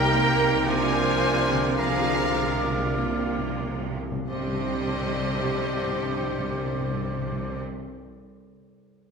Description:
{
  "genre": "cinematic, emotional film score for orchestra",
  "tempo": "45-58 BPM",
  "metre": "3/4",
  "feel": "rubato",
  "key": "C minor",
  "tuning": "A4 = 442 Hz",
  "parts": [
    { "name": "clear symphonic violin section", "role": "melody", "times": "0.0-7.6 s", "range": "Eb5 to Ab5", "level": "-31 LUFS", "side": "left 4 dB", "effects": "none" },
    { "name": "clear clarinet", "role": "second line", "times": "0.0-7.6 s", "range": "G4 to Bb4", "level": "-34 LUFS", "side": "left 2 dB", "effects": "none" },
    { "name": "concert flute", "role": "second line", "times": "0.0-7.6 s", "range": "Bb4 to C5", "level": "-30 LUFS", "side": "equal", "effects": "none" },
    { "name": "rich symphonic violin section", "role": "second line", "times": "0.0-7.6 s", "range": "D4 to Bb4", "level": "-36 LUFS", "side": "left 1 dB", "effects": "none" },
    { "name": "warm oboe", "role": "second line", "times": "0.0-7.6 s", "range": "D5 to G5", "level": "-34 LUFS", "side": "right 2 dB", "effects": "none" },
    { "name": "bright symphonic viola section", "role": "accompaniment", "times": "0.0-7.6 s", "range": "F3 to Bb4", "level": "-32 LUFS", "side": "right 3 dB", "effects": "none" },
    { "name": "dark French horn section", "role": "sustained chords", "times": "0.0-7.6 s", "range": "D3 to Eb4", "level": "-32 LUFS", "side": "right 1 dB", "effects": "none" },
    { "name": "concert harp", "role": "arpeggios", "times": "0.0-8.2 s", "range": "C3 to D6", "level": "-36 LUFS", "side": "left 6 dB", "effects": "none" },
    { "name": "rich symphonic cello section", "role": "bass", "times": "0.0-7.6 s", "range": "C3", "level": "-32 LUFS", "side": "right 3 dB", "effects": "none" },
    { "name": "warm symphonic double bass section", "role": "bass", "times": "0.0-7.6 s", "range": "C2", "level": "-34 LUFS", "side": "right 5 dB", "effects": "none" },
    { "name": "timpani", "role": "percussion", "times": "0.7-7.6 s", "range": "C3", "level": "-34 LUFS", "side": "left 2 dB", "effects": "none" }
  ],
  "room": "wet scoring stage reverb, RT60 1.6 s",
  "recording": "minimal, uncompressed stereo recording",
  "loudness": "-23 LUFS",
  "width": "side -5 dB against mid",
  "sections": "0.0-4.3 A section; 4.3-8.3 B section",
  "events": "slowing down 0.0-4.3; timpani fill 0.7-4.3",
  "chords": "0.0 Eb/C; 0.7 Bb/C; 4.3 Cmadd9"
}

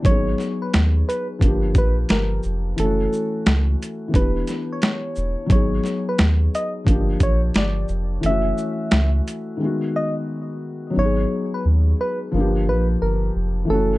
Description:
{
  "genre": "lo-fi hip hop",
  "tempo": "88 BPM",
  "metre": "4/4",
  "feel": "swing 64% on 16ths",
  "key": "unclear",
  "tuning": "A4 = 439 Hz",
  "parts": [
    { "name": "felt-muted upright piano", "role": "accompaniment", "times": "0.0-14.0 s", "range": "D#3 to G#4", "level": "-24 LUFS", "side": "left 2 dB", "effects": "cassette tape, low-pass filter" },
    { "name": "boom bap sampler-style drum kit", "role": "drums", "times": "0.0-9.5 s", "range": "hi-hat, kick drum, shaker, snare drum", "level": "-19 LUFS", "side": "equal", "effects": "overdrive" },
    { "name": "soft struck synth lead", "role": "melody", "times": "0.1-14.0 s", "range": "A4 to E5", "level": "-26 LUFS", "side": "right 1 dB", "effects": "chorus, low-pass filter, tape echo, plate reverb" },
    { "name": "soft dub sub bass", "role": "bass", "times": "0.1-14.0 s", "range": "E1 to D#2", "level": "-20 LUFS", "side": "equal", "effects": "none" }
  ],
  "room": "light reverb",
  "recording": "dark, warm production",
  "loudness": "-18 LUFS",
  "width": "side -19 dB against mid",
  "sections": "0.0-11.0 A section; 11.0-14.0 B section",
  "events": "break 9.6-11.0",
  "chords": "0.0 G#m7; 1.4 Gm7; 2.8 F#m7; 4.1 Em7; 5.5 G#m7; 6.9 Gm7; 8.2 F#m7; 9.6 G#m7; 12.3 Gm7"
}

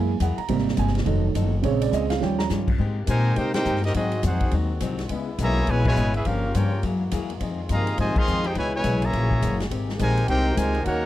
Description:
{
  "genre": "jazz, big band swing",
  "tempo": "208 BPM",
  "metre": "4/4",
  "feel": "swing 62% on 8ths",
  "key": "Ab major",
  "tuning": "A4 = 440 Hz",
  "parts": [
    { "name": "picked steel-string acoustic guitar", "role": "accompaniment", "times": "0.0-11.1 s", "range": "G2 to Bb4", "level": "-31 LUFS", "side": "left 6 dB", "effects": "none" },
    { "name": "warm upright piano", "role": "accompaniment", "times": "0.0-2.8 s", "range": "C3 to Bb5", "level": "-24 LUFS", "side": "right 9 dB", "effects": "none" },
    { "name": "upright bass", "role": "bass", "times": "0.0-11.1 s", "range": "F1 to C3", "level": "-24 LUFS", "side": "left 1 dB", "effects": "none" },
    { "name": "swinging big-band drum kit", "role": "drums", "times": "0.2-10.9 s", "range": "crash cymbal, hi-hat, kick drum, ride cymbal, snare drum", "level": "-30 LUFS", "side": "left 1 dB", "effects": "none" },
    { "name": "bright trombone section", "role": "sustained chords", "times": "2.8-11.1 s", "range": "C3 to G4", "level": "-35 LUFS", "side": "left 3 dB", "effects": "none" },
    { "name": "clear trumpet section", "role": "melody", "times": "3.1-11.1 s", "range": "C4 to C6", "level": "-26 LUFS", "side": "equal", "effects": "none" },
    { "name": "clear trombone section", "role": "second line", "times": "3.1-11.1 s", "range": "Cb3 to G4", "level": "-29 LUFS", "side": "right 2 dB", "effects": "none" }
  ],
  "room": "little or no reverb",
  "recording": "dry, close 1970s-style studio recording",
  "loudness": "-21 LUFS",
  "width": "side -14 dB against mid",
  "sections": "0.0-2.8 A section; 2.8-11.1 B section",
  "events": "upright piano solo 0.0-2.8; drum fill 2.2; band accent 3.5, 5.8, 8.1",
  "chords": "0.5 Abmaj9; 1.1 F7b9; 1.6 Bbm7; 2.2 Eb9; 2.8 Abmaj9; 3.9 Ab7; 5.1 Dbm7; 6.2 Gm7b5; 6.8 Gb9; 7.4 Fm7; 8.6 Dbm7; 9.1 Gb9; 9.7 Abmaj9"
}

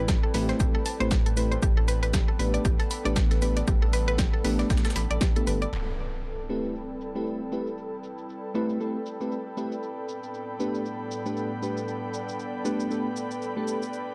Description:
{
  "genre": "deep house",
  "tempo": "117 BPM",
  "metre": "4/4",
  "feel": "swing 57% on 16ths",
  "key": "unclear",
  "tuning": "A4 = 440 Hz",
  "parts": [
    { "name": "warbly tape-like pad", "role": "sustained chords", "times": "0.0-14.1 s", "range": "A2 to B4", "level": "-40 LUFS", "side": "equal", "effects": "chorus, built-in reverb, sidechain pumping" },
    { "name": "smooth synth bass", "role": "bass", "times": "0.0-5.7 s", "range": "G1 to A1", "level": "-30 LUFS", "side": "equal", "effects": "sidechain pumping" },
    { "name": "airy breathy pad", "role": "texture", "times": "0.0-14.1 s", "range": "A4 to B5", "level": "-40 LUFS", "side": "equal", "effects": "chorus, sidechain pumping" },
    { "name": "mallet-like synth pluck", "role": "arpeggios", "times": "0.1-5.7 s", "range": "G4 to B5", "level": "-35 LUFS", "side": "equal", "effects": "chorus, sidechain pumping, tape echo" },
    { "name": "breakbeat sampler-style drum kit", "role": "drums", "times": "0.1-5.6 s", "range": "hi-hat, shaker, snare drum", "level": "-41 LUFS", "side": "equal", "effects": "high-pass filter on perc, high-pass filter on hats, high-pass filter on snare" },
    { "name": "electronic kick drum", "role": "drums", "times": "0.1-5.3 s", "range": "none", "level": "-27 LUFS", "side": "equal", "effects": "none" },
    { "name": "punchy analog drum machine", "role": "drums", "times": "0.1-14.1 s", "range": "cabasa, crash cymbal, hi-hat, snare drum", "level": "-38 LUFS", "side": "equal", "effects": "low-pass filter on hats, low-pass filter on snare, low-pass filter on cymbals, low-pass filter on perc, low-pass filter on room" },
    { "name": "mellow FM electric piano", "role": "stabs", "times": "0.3-13.8 s", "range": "A3 to B4", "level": "-33 LUFS", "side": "equal", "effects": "chorus, phaser, vintage 12-bit sampler grit, sidechain pumping, tape echo" },
    { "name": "impact", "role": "sound effects", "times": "5.7-7.8 s", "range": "none", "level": "-38 LUFS", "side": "equal", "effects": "none" }
  ],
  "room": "little or no reverb",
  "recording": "dry, gritty hardware recording, transformer saturation",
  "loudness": "-28 LUFS",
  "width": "mono",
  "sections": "0.0-5.7 A section; 5.7-14.1 B section",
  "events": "impact 5.7-7.8",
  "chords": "0.0 Am9; 1.6 Gadd9/A; 5.7 Am9; 9.8 Gadd9/A"
}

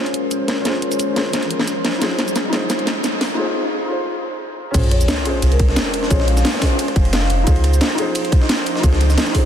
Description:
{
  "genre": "liquid drum and bass",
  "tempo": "176 BPM",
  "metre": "4/4",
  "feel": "swing 54% on 16ths",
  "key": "Bb minor",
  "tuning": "A4 = 443 Hz",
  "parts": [
    { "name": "felt-muted upright piano", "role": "accompaniment", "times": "0.0-9.5 s", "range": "Db4 to C5", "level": "-24 LUFS", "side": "left 1 dB", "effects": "dub echo" },
    { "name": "airy breathy pad", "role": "sustained chords", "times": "0.0-9.5 s", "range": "F3 to Eb5", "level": "-26 LUFS", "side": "left 1 dB", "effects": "chorus, sidechain pumping" },
    { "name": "riser and sub drop", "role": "sound effects", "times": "0.1-6.1 s", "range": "none", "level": "-28 LUFS", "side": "equal", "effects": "none" },
    { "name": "garage drum kit", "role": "drums", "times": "0.1-9.4 s", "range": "cabasa, crash cymbal, hi-hat, rim click, snare drum", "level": "-22 LUFS", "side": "equal", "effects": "none" },
    { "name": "warm sub bass", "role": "bass", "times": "4.7-9.2 s", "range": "F1 to Db2", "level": "-16 LUFS", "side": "equal", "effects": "none" },
    { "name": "breakbeat sampler-style drum kit", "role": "drums", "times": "4.7-9.4 s", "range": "hi-hat, ride cymbal, snare drum", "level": "-24 LUFS", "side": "equal", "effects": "high-pass filter on cymbals, high-pass filter on snare, high-pass filter on hats, high-pass filter on room" },
    { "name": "electronic kick drum", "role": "drums", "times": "4.7-9.4 s", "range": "none", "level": "-16 LUFS", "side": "equal", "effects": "none" },
    { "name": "vibraphone with soft mallets", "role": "melody", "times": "4.9-7.5 s", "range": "Bb4 to F5", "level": "-28 LUFS", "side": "left 3 dB", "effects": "dub echo" }
  ],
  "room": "moderate huge ambient reverb, RT60 4.3 s",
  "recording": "dense, heavily limited modern master, high-pass filter",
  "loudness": "-15 LUFS",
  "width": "side -9 dB against mid",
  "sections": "0.0-4.7 A section; 4.7-9.5 B section",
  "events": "build-up 0.0-4.7; drum fill 0.0-3.4; riser 0.1-3.4; filter sweep on analog synth pad 0.0-4.7; filter sweep 0.0-4.7; break 3.4-4.7; drop 4.7-9.5; impact 4.7-6.1",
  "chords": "0.0 Bbm9; 2.0 Dbmaj9; 4.7 Bbm9; 7.5 Dbmaj9"
}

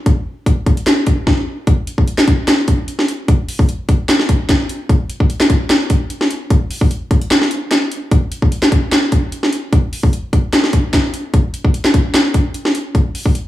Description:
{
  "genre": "hip hop",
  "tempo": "149 BPM",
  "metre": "4/4",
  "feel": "half-time",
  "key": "none",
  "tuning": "none",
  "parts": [
    { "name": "trap drum kit", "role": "drums", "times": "0.1-13.4 s", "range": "handclaps, hi-hat, kick drum, snare drum", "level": "-13 LUFS", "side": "equal", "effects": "none" }
  ],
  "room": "moderate digital room reverb, RT60 1.2 s, digital ambience",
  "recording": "small room ambience",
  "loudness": "-13 LUFS",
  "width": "side -14 dB against mid",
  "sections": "0.0-1.7 A section; 1.7-13.5 B section",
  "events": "stop 1.3-1.7; kick muted 7.3-8.1",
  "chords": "none"
}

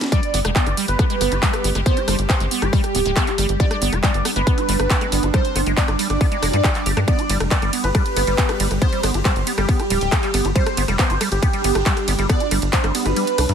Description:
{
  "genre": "psychedelic trance",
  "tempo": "138 BPM",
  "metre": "4/4",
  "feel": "straight",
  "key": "G major",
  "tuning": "A4 = 442 Hz",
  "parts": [
    { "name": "evolving wavetable pad", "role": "sustained chords", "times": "0.0-13.5 s", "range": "G3 to G4", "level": "-28 LUFS", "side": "right 3 dB", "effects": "ensemble chorus, built-in reverb, sidechain pumping" },
    { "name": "techno drum kit", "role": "drums", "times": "0.0-13.5 s", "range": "handclaps, hi-hat, ride cymbal, rim click, snare drum", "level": "-24 LUFS", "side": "equal", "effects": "overdrive" },
    { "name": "wide unison lead", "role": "melody", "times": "0.1-13.5 s", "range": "G4 to D5", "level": "-24 LUFS", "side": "right 2 dB", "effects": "phaser, sidechain pumping, ping-pong delay" },
    { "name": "liquid acid bass", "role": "riff", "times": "0.1-13.5 s", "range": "G3 to G4", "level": "-26 LUFS", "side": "right 1 dB", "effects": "chorus, auto-pan, sidechain pumping, ping-pong delay" },
    { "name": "electronic kick drum", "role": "drums", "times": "0.1-12.8 s", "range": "none", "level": "-19 LUFS", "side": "equal", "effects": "distortion, overdrive" },
    { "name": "tight sequencer bass", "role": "bass", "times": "0.3-13.5 s", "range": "D1 to G2", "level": "-22 LUFS", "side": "equal", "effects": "tube saturation" },
    { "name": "formant-sweep wobble bass", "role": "second line", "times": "0.6-13.5 s", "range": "G3 to D4", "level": "-36 LUFS", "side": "left 1 dB", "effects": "none" }
  ],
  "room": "little or no reverb",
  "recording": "none",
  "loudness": "-16 LUFS",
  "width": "side -8 dB against mid",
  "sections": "0.0-13.5 A section",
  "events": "kick drops out 13.2-13.5",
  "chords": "0.0 G5"
}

